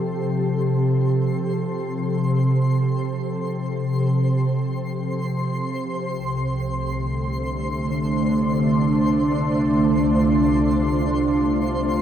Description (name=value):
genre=ambient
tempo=free time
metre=none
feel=none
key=unclear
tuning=A4 = 441 Hz
part: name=ethereal airy pad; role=sustained chords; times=0.0-12.0 s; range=C2 to A4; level=-20 LUFS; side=equal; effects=ensemble chorus, built-in reverb, shimmer reverb
part: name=twinkling granular texture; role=texture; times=0.0-12.0 s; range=C5 to C6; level=-30 LUFS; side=left 1 dB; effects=built-in reverb, analog chorus, shimmer reverb
room=wet plate reverb, RT60 2.7 s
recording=dreamy mix soaked in reverb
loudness=-19 LUFS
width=side -9 dB against mid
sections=0.0-12.0 A section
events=fade-in on synth texture 0.0-12.0; filter sweep on ambient pad 0.0-12.0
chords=0.0 Fadd9/C; 6.1 Dm7/C